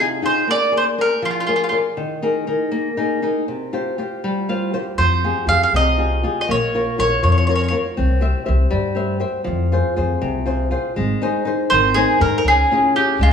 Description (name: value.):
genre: italian folk, Italian serenade.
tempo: 80 BPM (dotted quarters).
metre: 6/8.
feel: straight.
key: F minor.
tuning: A4 = 439 Hz.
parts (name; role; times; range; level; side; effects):
mandolin; melody; 0.0-1.8, 5.0-7.8, 11.7-13.3 s; F4 to F5; -17 LUFS; right 1 dB; none.
flamenco guitar; accompaniment; 0.0-13.3 s; C3 to F5; -21 LUFS; left 2 dB; none.
upright bass; bass; 5.0-13.3 s; Ab1 to Ab2; -19 LUFS; equal; none.
room: moderate recital hall reverb, RT60 1.5 s.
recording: small room ambience.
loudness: -16 LUFS.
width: side -7 dB against mid.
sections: 0.0-11.0 A section; 11.0-13.3 B section.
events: nylon-string guitar fill 4.2-5.0, 10.2-11.0.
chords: 0.5 Bb7; 2.0 Ebsus4; 3.5 Csus4; 5.0 Fmadd9; 6.5 Bbm; 8.0 C; 9.5 Fm; 11.0 Ab; 12.5 Db.